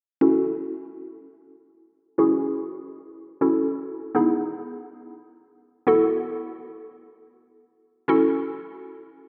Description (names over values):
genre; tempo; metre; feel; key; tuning
pop; free time; none; none; unclear; A4 = 440 Hz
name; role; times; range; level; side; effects
hollow square pluck; accompaniment; 0.2-9.3 s; B3 to A4; -24 LUFS; equal; chorus, low-pass filter
room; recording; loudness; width
wet lush hall reverb, RT60 2.6 s; rough home demo mix, nothing above 7.9 kHz; -24 LUFS; mono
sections
0.2-9.3 A section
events
filter sweep on synth pluck 0.2-9.3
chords
0.2 F#m7; 4.2 Emaj7; 5.9 B7sus4; 8.1 F#m7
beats
free time